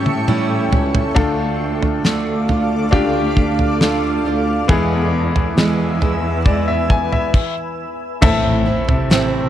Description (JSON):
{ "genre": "pop ballad", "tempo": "68 BPM", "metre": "4/4", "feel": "straight", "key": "unclear", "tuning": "A4 = 442 Hz", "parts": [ { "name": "bright upright piano", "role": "accompaniment", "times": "0.0-9.5 s", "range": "D3 to G#5", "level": "-22 LUFS", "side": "left 4 dB", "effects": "none" }, { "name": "granular cloud pad", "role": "sustained chords", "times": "0.0-9.5 s", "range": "A4 to E6", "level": "-24 LUFS", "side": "left 1 dB", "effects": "built-in reverb" }, { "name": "picked steel-string acoustic guitar", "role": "arpeggios", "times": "0.0-9.5 s", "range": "E2 to F4", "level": "-22 LUFS", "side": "right 5 dB", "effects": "none" }, { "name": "muted symphonic cello section", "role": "bass", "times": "0.0-9.5 s", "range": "C#2 to C3", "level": "-22 LUFS", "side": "equal", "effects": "none" }, { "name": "downlifter and impact", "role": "sound effects", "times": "0.0-1.2, 8.4-9.5 s", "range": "none", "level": "-25 LUFS", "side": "equal", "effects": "none" }, { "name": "damped 70s drum kit", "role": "drums", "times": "0.1-9.3 s", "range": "crash cymbal, kick drum, snare drum, toms", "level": "-17 LUFS", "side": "equal", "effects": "none" } ], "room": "light reverb", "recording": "dark, warm production", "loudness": "-14 LUFS", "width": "side -11 dB against mid", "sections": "0.0-8.2 A section; 8.2-9.5 B section", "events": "drum fill 0.0-1.2; stop 7.3-8.2; impact 8.2-9.5; upright piano solo 8.2-9.5", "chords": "0.0 A7; 1.2 Dm; 4.7 E; 8.2 Am", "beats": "0.28 | 1.17 2.05 2.93 3.81 | 4.70 5.58 6.46 7.34 | 8.22 9.11" }